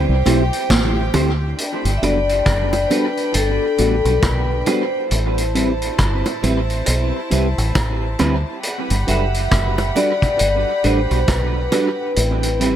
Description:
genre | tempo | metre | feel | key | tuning
lovers rock reggae | 68 BPM | 4/4 | swing 60% on 16ths | G major | A4 = 440 Hz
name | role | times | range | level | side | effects
vibraphone with medium hard mallets | melody | 0.0-12.8 s | A4 to E5 | -22 LUFS | left 2 dB | tape echo
warm symphonic violin section | second line | 0.0-12.8 s | C4 to B5 | -27 LUFS | left 1 dB | none
deep dub fingered electric bass | bass | 0.0-12.8 s | F#1 to D2 | -19 LUFS | equal | none
mellow tine electric piano | accompaniment | 0.1-12.8 s | A3 to B4 | -26 LUFS | left 3 dB | slow stereo tremolo, tape echo
clean electric guitar | stabs | 0.3-12.8 s | G3 to C5 | -25 LUFS | right 5 dB | ensemble chorus, tape echo
vintage drum kit | drums | 0.3-12.8 s | hi-hat, kick drum, rim click, snare drum | -22 LUFS | equal | gated reverb, tape echo
bongos | percussion | 0.3-12.0 s | none | -28 LUFS | right 3 dB | none
room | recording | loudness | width
light reverb, small room ambience | none | -16 LUFS | side -10 dB against mid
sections
0.0-1.6 A section; 1.6-12.8 B section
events
none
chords
0.0 D9sus4; 1.6 Gmaj7; 5.1 Am9; 8.6 Gmaj7; 12.2 Am9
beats
0.70 | 1.58 2.46 3.35 4.23 | 5.11 5.99 6.87 7.75 | 8.63 9.52 10.40 11.28 | 12.16

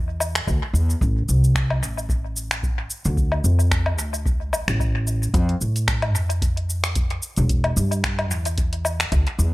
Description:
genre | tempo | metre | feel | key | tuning
sunset chillout | 111 BPM | 4/4 | swing 55% on 16ths | A minor | A4 = 440 Hz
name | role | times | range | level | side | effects
upright bass | bass | 0.0-9.5 s | E1 to A2 | -21 LUFS | equal | none
deep house drum kit | drums | 0.2-9.5 s | finger snaps, hi-hat, shaker, woodblock | -26 LUFS | left 1 dB | overdrive, studio reverb, analog delay
electronic kick drum | drums | 0.5-9.2 s | none | -24 LUFS | equal | studio reverb
room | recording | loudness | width
little or no reverb | echo-heavy mix | -19 LUFS | side -19 dB against mid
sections
0.0-9.5 A section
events
none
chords
none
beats
0.47 | 1.01 1.55 2.09 2.63 | 3.17 3.71 4.25 4.79 | 5.34 5.88 6.42 6.96 | 7.50 8.04 8.58 9.12

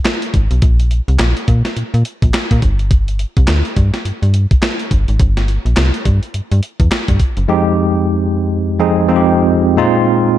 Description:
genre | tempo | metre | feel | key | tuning
R&B, new jack swing | 105 BPM | 4/4 | swing 60% on 16ths | F minor | A4 = 440 Hz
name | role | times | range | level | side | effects
gated 80s digital drum machine | drums | 0.0-7.5 s | handclaps, hi-hat, kick drum, snare drum | -15 LUFS | equal | gated reverb, gated reverb snare
slap-like FM bass | bass | 0.3-7.5 s | Gb1 to Bb2 | -13 LUFS | equal | none
bell-like tine electric piano | accompaniment | 7.5-10.4 s | F2 to Ab4 | -11 LUFS | right 1 dB | medium stereo tremolo
room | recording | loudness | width
light reverb, digital ambience | dark, warm production | -12 LUFS | side -12 dB against mid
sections
0.0-7.5 A section; 7.5-10.4 B section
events
none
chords
0.0 N.C.; 2.6 G5; 5.2 N.C.; 7.5 Fm7; 9.8 Bb7sus4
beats
0.05 | 0.62 1.20 1.77 2.34 | 2.91 3.48 4.05 4.62 | 5.20 5.77 6.34 6.91 | 7.48 8.05 8.62 9.20 | 9.77 10.34

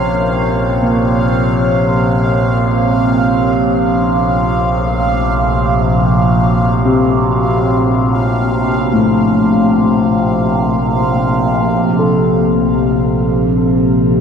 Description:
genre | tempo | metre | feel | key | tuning
dark ambient drone | free time | none | none | Bb harmonic minor | A4 = 439 Hz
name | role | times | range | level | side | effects
deep dark ambient pad | sustained chords | 0.0-11.7 s | A3 to Db5 | -23 LUFS | equal | chorus, built-in reverb, shimmer reverb
overtone-sweeping drone | drone | 0.0-14.2 s | Bb1 to C3 | -13 LUFS | equal | chorus, built-in reverb, phaser
bubbling stepped-filter texture | texture | 0.0-11.7 s | F5 | -21 LUFS | right 3 dB | chorus, built-in reverb, shimmer reverb
dark concert grand piano | arpeggios | 0.8-14.2 s | A2 to A4 | -18 LUFS | left 4 dB | ping-pong delay
room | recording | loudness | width
wet huge ambient reverb, RT60 8.5 s | dark, warm production | -11 LUFS | side -7 dB against mid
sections
0.0-11.6 A section; 11.6-14.2 B section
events
fade-out on ambient pad 0.0-11.6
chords
0.0 Bbmadd9; 3.3 Gbm; 11.6 Bbsus2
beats
free time

